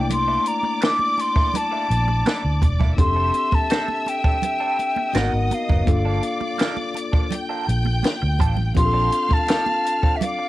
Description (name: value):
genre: lush 1970s-style soul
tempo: 83 BPM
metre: 4/4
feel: straight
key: F major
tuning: A4 = 440 Hz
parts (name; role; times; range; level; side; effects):
- breathy mellow silver concert flute; melody; 0.0-10.5 s; E5 to D6; -22 LUFS; equal; cassette tape
- clear studio string section; second line; 0.0-10.5 s; D5 to G6; -30 LUFS; left 2 dB; none
- tine electric piano; accompaniment; 0.0-10.5 s; A3 to Bb4; -28 LUFS; left 5 dB; medium stereo tremolo
- clean electric guitar; riff; 0.0-10.4 s; F3 to Bb4; -31 LUFS; right 8 dB; wah
- vintage muted fingered electric bass; bass; 0.0-9.1 s; E1 to D2; -21 LUFS; equal; none
- compact cocktail drum kit; drums; 0.1-10.4 s; hi-hat, kick drum, snare drum; -20 LUFS; equal; cassette tape
- congas; percussion; 0.1-10.4 s; none; -32 LUFS; right 8 dB; none
room: light reverb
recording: home recording on cassette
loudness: -18 LUFS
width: side -16 dB against mid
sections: 0.0-10.5 A section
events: none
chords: 0.0 C13; 3.0 F69; 5.2 Abm9; 5.9 Gm9; 8.8 Bbmaj9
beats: | 0.10 0.82 1.54 2.26 | 2.98 3.71 4.43 5.15 | 5.88 6.60 7.32 8.04 | 8.77 9.49 10.22